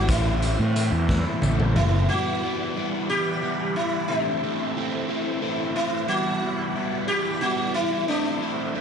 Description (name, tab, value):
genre	psychedelic rock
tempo	60 BPM (dotted quarters)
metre	6/8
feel	straight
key	E minor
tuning	A4 = 441 Hz
part	sitar	melody	0.0-8.8 s	D4 to G4	-27 LUFS	equal	dub echo
part	bright tonewheel organ	sustained chords	0.0-8.8 s	G3 to C6	-37 LUFS	right 6 dB	chorus vibrato, fast rotary speaker
part	crunchy overdriven guitar	riff	0.0-8.8 s	E3 to E4	-27 LUFS	equal	phaser, dub echo
part	fuzz fingered electric bass	bass	0.0-2.1 s	F#1 to A2	-23 LUFS	equal	overdrive
part	raw garage drum kit	drums	0.1-1.9 s	hi-hat, kick drum, snare drum, toms	-26 LUFS	equal	none
part	tambourine	percussion	0.1-1.6 s	none	-44 LUFS	left 5 dB	none
room	studio reverb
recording	echo-heavy mix, nothing above 10.6 kHz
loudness	-22 LUFS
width	side -7 dB against mid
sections	0.0-2.1 A section; 2.1-8.8 A section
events	drum fill 1.1-2.1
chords	0.1 Am; 2.1 Emadd9; 4.1 Am; 6.1 Emadd9; 8.1 Am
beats	| 0.09 1.09 | 2.09 3.09 | 4.09 5.09 | 6.09 7.09 | 8.08